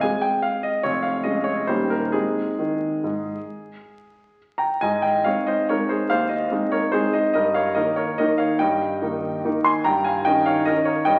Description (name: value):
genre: classical, piano waltz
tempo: 130-157 BPM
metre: 3/4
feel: rubato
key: Ab major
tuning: A4 = 440 Hz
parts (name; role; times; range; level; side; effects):
- clear concert grand piano; solo; 0.0-11.2 s; Eb1 to C6; -22 LUFS; equal; none
room: wet recital hall reverb, RT60 1.4 s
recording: very old 78 rpm record, vinyl crackle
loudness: -22 LUFS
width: mono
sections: 0.0-4.8 A section; 4.8-11.2 B section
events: none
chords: 0.0 Ab; 0.8 Db/F; 1.7 Eb7; 2.1 Ab; 7.4 Eb/G; 9.9 Eb7/G